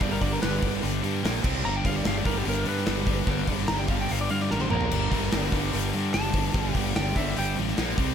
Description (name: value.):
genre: hard rock.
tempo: 147 BPM.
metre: 4/4.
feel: straight.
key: unclear.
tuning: A4 = 440 Hz.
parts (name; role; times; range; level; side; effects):
lightly driven lead guitar; melody; 0.0-7.6 s; G4 to Bb5; -32 LUFS; equal; none.
high-gain distorted guitar; riff; 0.0-8.1 s; G2 to C4; -31 LUFS; left 15 dB; distortion.
sludgy distorted guitar; riff; 0.0-8.1 s; G2 to C4; -31 LUFS; right 11 dB; overdrive.
fuzz fingered electric bass; bass; 0.0-8.1 s; G1 to G2; -30 LUFS; equal; overdrive.
gated 80s drum kit; drums; 0.0-8.1 s; crash cymbal, hi-hat, kick drum, snare drum, toms; -28 LUFS; equal; none.
room: small room ambience.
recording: none.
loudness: -23 LUFS.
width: side -8 dB against mid.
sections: 0.0-8.1 A section.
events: lead electric guitar solo 0.0-8.1; drum fill 4.5-4.9.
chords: 0.0 G; 1.2 Bb5; 1.4 C5; 1.6 G; 4.7 Bb5; 4.9 G5; 7.8 Bb5.